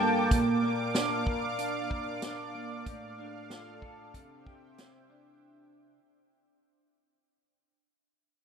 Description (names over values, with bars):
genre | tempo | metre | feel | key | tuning
dream pop | 94 BPM | 4/4 | straight | unclear | A4 = 442 Hz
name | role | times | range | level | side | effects
lush unison pad | sustained chords | 0.0-5.4 s | Bb3 to D6 | -32 LUFS | equal | chorus
electric guitar through a small old amp | arpeggios | 0.0-6.0 s | G2 to Bb4 | -33 LUFS | right 2 dB | wide subtle chorus, ping-pong delay
vintage drum kit | drums | 0.3-4.9 s | hi-hat, kick drum, snare drum | -31 LUFS | right 1 dB | none
room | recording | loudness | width
moderate huge ambient reverb, RT60 4.0 s | none | -28 LUFS | side -7 dB against mid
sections
0.0-5.4 A section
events
fade-out 0.0-5.4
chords
0.3 Bb; 2.9 Dm/A; 4.1 Cadd9